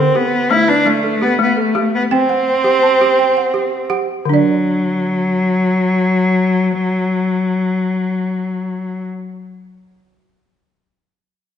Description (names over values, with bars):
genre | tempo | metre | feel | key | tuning
west african traditional, West African string and xylophone music | 112 BPM (dotted quarters) | 12/8 | straight | D mixolydian | A4 = 441 Hz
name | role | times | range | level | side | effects
warm cello | melody | 0.0-9.1 s | F#3 to E4 | -15 LUFS | left 1 dB | none
balafon | arpeggios | 0.0-9.2 s | D3 to A5 | -17 LUFS | right 1 dB | none
room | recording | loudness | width
wet recital hall reverb, RT60 1.8 s | recorded in a church or concert hall, nothing above 10.5 kHz | -13 LUFS | side -9 dB against mid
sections
0.0-4.3 A section; 4.3-8.6 B section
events
none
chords
0.0 D5; 2.1 C5; 4.3 D